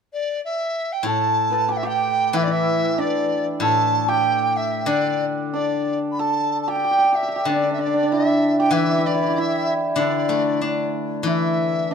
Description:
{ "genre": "chinese traditional, Chinese chamber ensemble", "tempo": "94 BPM", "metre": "2/4", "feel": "rubato", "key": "D zhi mode", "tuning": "A4 = 440 Hz", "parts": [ { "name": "mellow large dizi", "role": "melody", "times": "0.1-11.9 s", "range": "D5 to B5", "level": "-22 LUFS", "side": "right 1 dB", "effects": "none" }, { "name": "steel-string zither", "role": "accompaniment", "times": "1.0-11.9 s", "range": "A2 to D4", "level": "-24 LUFS", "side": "left 4 dB", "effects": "none" }, { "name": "hammered dulcimer", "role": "second line", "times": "1.1-11.9 s", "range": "D4 to B4", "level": "-23 LUFS", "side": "right 2 dB", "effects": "none" } ], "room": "moderate recital hall reverb, RT60 1.8 s", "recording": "close, detailed microphones", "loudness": "-18 LUFS", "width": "side -6 dB against mid", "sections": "0.0-1.1 A section; 1.1-11.3 B section", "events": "none", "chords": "none" }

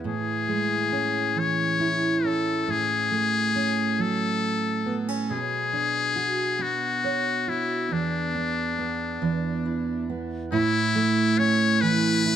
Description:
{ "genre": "pop", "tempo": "46 BPM (dotted quarters)", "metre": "6/8", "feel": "straight", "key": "A major", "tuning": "A4 = 440 Hz", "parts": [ { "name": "fingerpicked steel-string acoustic guitar", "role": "accompaniment", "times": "0.0-12.4 s", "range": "E2 to C#5", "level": "-25 LUFS", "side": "right 4 dB", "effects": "none" }, { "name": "trumpet with metal mute", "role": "melody", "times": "0.1-12.4 s", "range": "D4 to C#5", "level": "-25 LUFS", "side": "left 6 dB", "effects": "ping-pong delay" } ], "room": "light reverb", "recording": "dark, warm production", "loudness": "-22 LUFS", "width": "side -9 dB against mid", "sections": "0.0-10.5 A section; 10.5-12.4 B section", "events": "none", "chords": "0.0 Amaj7; 2.7 F#madd9/A; 5.3 Bmadd9; 7.9 E5; 10.5 A" }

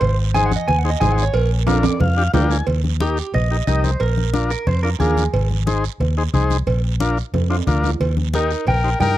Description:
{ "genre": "latin, cumbia", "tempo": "180 BPM", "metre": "4/4", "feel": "straight", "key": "Eb major", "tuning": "A4 = 440 Hz", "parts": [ { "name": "clean electric guitar", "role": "melody", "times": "0.0-5.2, 8.3-9.2 s", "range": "G4 to Ab5", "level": "-23 LUFS", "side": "right 3 dB", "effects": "spring reverb, tape echo" }, { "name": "vintage muted fingered electric bass", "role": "bass", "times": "0.0-9.2 s", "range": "Ab1 to G2", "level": "-19 LUFS", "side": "equal", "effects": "none" }, { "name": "congas", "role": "percussion", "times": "0.0-9.2 s", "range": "none", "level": "-25 LUFS", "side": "left 3 dB", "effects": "none" }, { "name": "cowbell and timbales", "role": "percussion", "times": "0.0-9.2 s", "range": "none", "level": "-26 LUFS", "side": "right 7 dB", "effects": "none" }, { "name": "guiro", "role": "percussion", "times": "0.0-9.2 s", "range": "none", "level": "-35 LUFS", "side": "right 22 dB", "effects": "none" }, { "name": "combo organ", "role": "accompaniment", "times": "0.3-9.2 s", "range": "D4 to Ab5", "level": "-22 LUFS", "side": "left 4 dB", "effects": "none" }, { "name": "bright trumpet", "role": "second line", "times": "8.3-9.2 s", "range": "Eb4 to Bb4", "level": "-24 LUFS", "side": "left 7 dB", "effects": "none" } ], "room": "little or no reverb", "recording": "dry, close 1970s-style studio recording", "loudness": "-16 LUFS", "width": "side -14 dB against mid", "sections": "0.0-2.7 A section; 2.7-9.2 B section", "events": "clean electric guitar solo 0.0-2.7; drum fill 1.7-2.7, 7.3-8.0; transistor combo organ fill 1.7-2.7", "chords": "0.0 Ab; 1.3 Bb; 2.7 Eb; 4.0 Bb; 5.3 Ab; 6.7 Bb; 8.0 Eb" }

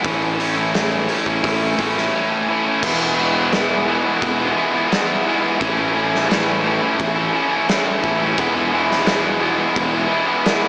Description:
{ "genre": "quiet-loud alternative rock", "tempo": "86 BPM", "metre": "4/4", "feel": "straight", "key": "E major", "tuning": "A4 = 440 Hz", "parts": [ { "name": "cranked stack guitar", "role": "riff", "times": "0.0-10.7 s", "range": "A2 to E4", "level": "-20 LUFS", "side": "equal", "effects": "overdrive" }, { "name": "fuzz fingered electric bass", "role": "bass", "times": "0.0-10.1 s", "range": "E1 to A1", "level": "-29 LUFS", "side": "equal", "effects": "overdrive" }, { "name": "oversized low-tuned drum kit", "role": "drums", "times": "0.0-10.6 s", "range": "crash cymbal, hi-hat, kick drum, snare drum", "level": "-24 LUFS", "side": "equal", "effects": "none" } ], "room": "light reverb", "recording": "small speaker sound", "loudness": "-18 LUFS", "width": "mono", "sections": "0.0-2.8 A section; 2.8-10.7 B section", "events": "none", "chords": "0.0 A; 2.8 E; 5.6 A; 8.4 E" }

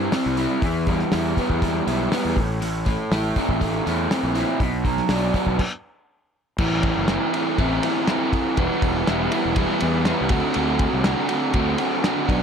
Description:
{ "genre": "indie rock", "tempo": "121 BPM", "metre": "4/4", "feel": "straight", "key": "unclear", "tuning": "A4 = 440 Hz", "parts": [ { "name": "crunchy overdriven guitar", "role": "riff", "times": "0.0-12.4 s", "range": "A2 to F#4", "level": "-21 LUFS", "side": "right 1 dB", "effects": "none" }, { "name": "fuzz fingered electric bass", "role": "bass", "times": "0.0-12.4 s", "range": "E1 to E2", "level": "-26 LUFS", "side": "left 1 dB", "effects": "overdrive" }, { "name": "cloth-damped thuddy drum kit", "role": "drums", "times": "0.1-12.4 s", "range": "crash cymbal, hi-hat, kick drum, ride cymbal, snare drum", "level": "-25 LUFS", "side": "equal", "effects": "none" } ], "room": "light reverb, studio reverb", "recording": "none", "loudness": "-19 LUFS", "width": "side -7 dB against mid", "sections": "0.0-6.6 A section; 6.6-12.4 B section", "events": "stop 5.6-6.6", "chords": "0.0 C; 0.6 Em; 2.4 Am; 4.6 Bm; 5.6 N.C.; 6.6 Am; 8.6 Em; 10.3 D7" }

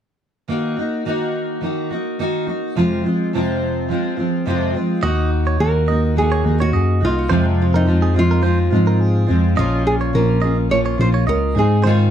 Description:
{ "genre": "pop", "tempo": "106 BPM", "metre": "4/4", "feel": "swing 55% on 16ths", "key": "unclear", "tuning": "A4 = 440 Hz", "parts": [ { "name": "fingerpicked steel-string acoustic guitar", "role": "accompaniment", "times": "0.5-12.1 s", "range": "F2 to Ab4", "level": "-19 LUFS", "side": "equal", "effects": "double-tracked left and right" }, { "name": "nylon-string guitar", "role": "melody", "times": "5.0-12.1 s", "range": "Eb4 to Db5", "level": "-22 LUFS", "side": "right 2 dB", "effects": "digital delay" }, { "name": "direct-recorded clean electric guitar", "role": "arpeggios", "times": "5.0-12.0 s", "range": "Ab4 to Eb5", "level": "-26 LUFS", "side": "right 7 dB", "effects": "none" }, { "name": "tine electric piano", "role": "bass", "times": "5.0-12.1 s", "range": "Bb1 to Ab2", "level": "-17 LUFS", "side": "left 1 dB", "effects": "none" } ], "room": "light reverb", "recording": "dark, warm production", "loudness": "-16 LUFS", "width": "side -9 dB against mid", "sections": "0.5-5.0 A section; 5.0-12.1 B section", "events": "none", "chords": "0.5 Ebm; 2.8 Fm; 5.0 Ebm; 7.3 Fm; 9.6 Bbm; 11.6 Ab" }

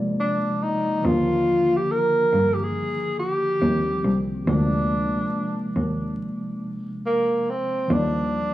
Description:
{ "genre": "hip hop", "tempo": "70 BPM", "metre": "4/4", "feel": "swing 66% on 16ths", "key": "Eb major", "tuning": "A4 = 440 Hz", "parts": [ { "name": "tine electric piano", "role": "accompaniment", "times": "0.0-8.5 s", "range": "C3 to D5", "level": "-26 LUFS", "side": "equal", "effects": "medium stereo tremolo, cassette tape, low-pass filter" }, { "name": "breathy tenor saxophone", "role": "melody", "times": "0.2-8.5 s", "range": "Bb3 to Bb4", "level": "-23 LUFS", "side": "equal", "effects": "low-pass filter, cassette tape, plate reverb" }, { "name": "muted cello", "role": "bass", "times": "1.0-8.5 s", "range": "C2 to G2", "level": "-24 LUFS", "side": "equal", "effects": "none" } ], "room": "wet booth ambience, RT60 0.2 s", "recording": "home recording on cassette, vinyl crackle, small room ambience", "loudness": "-20 LUFS", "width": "side -14 dB against mid", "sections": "0.0-8.5 A section", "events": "none", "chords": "0.0 Bb7; 1.0 Ebmaj7; 4.5 Bb7/D; 7.9 Ebmaj7" }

